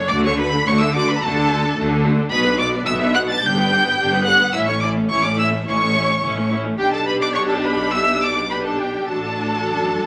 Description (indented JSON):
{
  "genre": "quick classical-period movement for string orchestra",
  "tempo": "107 BPM",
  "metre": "4/4",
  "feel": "straight",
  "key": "D major",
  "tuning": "A4 = 440 Hz",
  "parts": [
    { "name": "rich chamber violin section", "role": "second line", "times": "0.0-10.1 s", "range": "G4 to A5", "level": "-27 LUFS", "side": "equal", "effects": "none" },
    { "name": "rich studio viola section", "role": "accompaniment", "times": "0.0-10.1 s", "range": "A3 to B4", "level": "-25 LUFS", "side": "equal", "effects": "none" },
    { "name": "clear chamber double bass section", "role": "bass", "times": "0.0-10.1 s", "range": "G1 to D2", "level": "-28 LUFS", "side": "equal", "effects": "none" },
    { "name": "clear studio cello section", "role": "bass", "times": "0.0-10.1 s", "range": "F#2 to D3", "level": "-27 LUFS", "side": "equal", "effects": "none" },
    { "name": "warm chamber violin section", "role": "melody", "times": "0.1-10.1 s", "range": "G5 to A6", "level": "-22 LUFS", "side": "equal", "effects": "none" }
  ],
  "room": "moderate studio reverb, RT60 0.6 s",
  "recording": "vinyl crackle",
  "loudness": "-19 LUFS",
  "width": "mono",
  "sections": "0.0-10.1 A section",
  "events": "none",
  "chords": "0.1 D; 2.3 Bm; 3.4 G; 4.5 A; 6.8 G/B; 9.1 D/A"
}